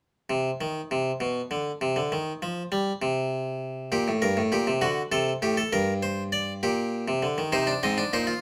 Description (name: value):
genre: classical, baroque-style 3-part fugue for harpsichord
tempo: 66 BPM (dotted quarters)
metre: 6/8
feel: straight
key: unclear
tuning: A4 = 441 Hz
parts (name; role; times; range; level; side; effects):
- harpsichord; solo; 0.3-8.4 s; G2 to Eb5; -27 LUFS; equal; none
room: moderate stone room reverb, RT60 1.0 s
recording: none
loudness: -27 LUFS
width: mono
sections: 0.3-8.4 A section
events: none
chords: 0.3 N.C.; 3.9 Gm; 4.8 D7; 5.7 Gm; 6.6 Gm/Bb; 7.5 Cm